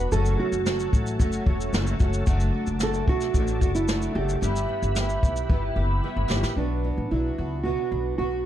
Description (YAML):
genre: acoustic pop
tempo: 112 BPM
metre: 4/4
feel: straight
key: unclear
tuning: A4 = 439 Hz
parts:
  - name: nylon-string guitar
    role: melody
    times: 0.0-8.5 s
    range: D4 to B4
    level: -28 LUFS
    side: right 4 dB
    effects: digital delay
  - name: fingerpicked twelve-string acoustic guitar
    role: accompaniment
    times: 0.0-8.5 s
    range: F#2 to G4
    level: -31 LUFS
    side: left 1 dB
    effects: double-tracked left and right
  - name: tonewheel organ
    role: sustained chords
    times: 0.0-6.6 s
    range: D4 to B5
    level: -39 LUFS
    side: left 2 dB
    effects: overdrive, chorus vibrato, slow rotary speaker
  - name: fingerpicked steel-string acoustic guitar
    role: arpeggios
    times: 0.0-8.5 s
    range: F#3 to G4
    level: -36 LUFS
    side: right 3 dB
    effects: none
  - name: upright bass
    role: bass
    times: 0.0-8.4 s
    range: E1 to C#2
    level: -26 LUFS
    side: left 1 dB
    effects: none
  - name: jazz brush drum kit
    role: drums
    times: 0.1-6.6 s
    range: kick drum, shaker, snare drum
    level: -25 LUFS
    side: equal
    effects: none
room: studio ambience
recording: dark, warm production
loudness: -22 LUFS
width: side -11 dB against mid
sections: 0.0-6.6 A section; 6.6-8.5 B section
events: drum fill 5.5-6.6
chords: 0.1 F#m; 2.3 D/F#; 4.4 Em/G; 6.6 Bm